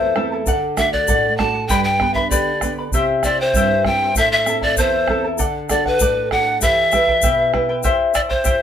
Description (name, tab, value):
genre	andean folk, Andean ensemble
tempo	98 BPM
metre	2/4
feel	straight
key	unclear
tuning	A4 = 443 Hz
part	breathy bright pan flute	melody	0.0-8.6 s	B4 to A5	-17 LUFS	equal	none
part	charango	accompaniment	0.0-8.6 s	E4 to B5	-20 LUFS	left 3 dB	none
part	nylon-string guitar	accompaniment	0.0-7.8 s	E2 to B4	-24 LUFS	right 4 dB	none
part	bombo	percussion	0.2-8.6 s	none	-24 LUFS	right 1 dB	none
part	egg shaker	percussion	0.5-8.6 s	none	-26 LUFS	left 6 dB	none
room	moderate small room reverb, RT60 0.5 s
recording	band playing live in one room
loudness	-15 LUFS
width	side -9 dB against mid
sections	0.0-7.8 A section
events	none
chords	0.5 D; 1.7 G; 2.9 C; 4.2 Am; 5.4 D; 6.6 Em; 7.8 C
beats	| 0.47 1.08 | 1.70 2.31 | 2.93 3.55 | 4.16 4.78 | 5.39 6.00 | 6.62 7.23 | 7.84 8.45